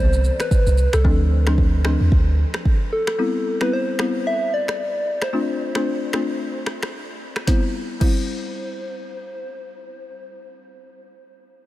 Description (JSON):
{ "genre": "afrobeats", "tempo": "112 BPM", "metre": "4/4", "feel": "swing 58% on 16ths", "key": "C major", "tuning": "A4 = 441 Hz", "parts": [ { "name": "soft struck synth lead", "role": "melody", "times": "0.0-11.1 s", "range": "A4 to E5", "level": "-26 LUFS", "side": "equal", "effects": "chorus, tremolo, tape echo" }, { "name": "warm 808-style bass", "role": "bass", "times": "0.0-2.4 s", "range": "C2 to E2", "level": "-17 LUFS", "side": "equal", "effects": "none" }, { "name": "afro-pop drum kit", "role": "drums", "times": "0.1-8.2 s", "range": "crash cymbal, finger snaps, kick drum, rim click, shaker, snare drum", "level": "-23 LUFS", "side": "equal", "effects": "none" }, { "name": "folk marimba with medium hard mallets", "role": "accompaniment", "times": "1.0-11.1 s", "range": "F3 to F4", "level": "-26 LUFS", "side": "left 2 dB", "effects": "none" } ], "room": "light reverb, digital ambience", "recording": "none", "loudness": "-18 LUFS", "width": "side -15 dB against mid", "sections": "0.0-7.5 A section; 7.5-11.7 B section", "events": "none", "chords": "0.0 Cmaj7(no3); 1.0 Dm7; 3.2 Cmaj7; 5.3 Dm7; 7.5 C" }